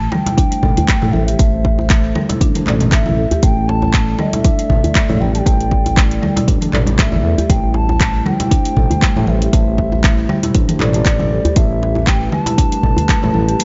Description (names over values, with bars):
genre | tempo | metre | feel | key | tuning
afro house | 118 BPM | 4/4 | swing 55% on 16ths | A minor | A4 = 441 Hz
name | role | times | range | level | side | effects
hollow bansuri | melody | 0.0-13.6 s | D5 to A5 | -25 LUFS | equal | delay
dark analog pad | sustained chords | 0.1-13.6 s | G3 to D5 | -29 LUFS | equal | chorus, sidechain pumping
smooth synth bass | bass | 0.0-13.5 s | A1 to A2 | -21 LUFS | equal | sidechain pumping
marimba with medium mallets | arpeggios | 0.1-13.6 s | G3 to A4 | -24 LUFS | equal | sidechain pumping, delay
afro-pop drum kit | drums | 0.1-13.6 s | handclaps, hi-hat, toms | -24 LUFS | equal | small room ambience
congas | percussion | 0.1-13.6 s | none | -25 LUFS | equal | none
djembe | percussion | 0.1-13.3 s | none | -25 LUFS | equal | none
electronic kick drum | drums | 0.4-13.2 s | none | -17 LUFS | equal | small room ambience
room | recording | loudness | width
little or no reverb | nothing above 7.6 kHz | -15 LUFS | mono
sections
0.0-13.6 A section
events
none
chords
0.0 Am7